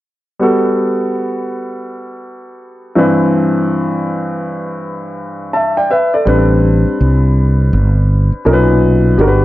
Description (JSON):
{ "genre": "hip hop", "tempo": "82 BPM", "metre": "4/4", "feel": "swing 63% on 16ths", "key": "G major", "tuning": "A4 = 444 Hz", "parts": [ { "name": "warm upright piano", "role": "accompaniment", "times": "0.4-9.4 s", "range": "G2 to A5", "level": "-14 LUFS", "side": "equal", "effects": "none" }, { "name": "mellow fretless electric bass", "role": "bass", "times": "6.3-9.4 s", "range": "G1 to C2", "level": "-11 LUFS", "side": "equal", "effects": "none" } ], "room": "moderate echo chamber reverb, RT60 1.8 s", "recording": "dark, warm production", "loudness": "-11 LUFS", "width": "side -16 dB against mid", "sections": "0.4-9.4 A section", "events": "none", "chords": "0.4 Gmaj9; 3.0 Cmaj9/G; 6.3 Am11; 8.5 Bmaj9", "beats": "| 0.41 1.14 1.87 2.61 | 3.34 4.07 4.80 5.53 | 6.26 7.00 7.73 8.46 | 9.19" }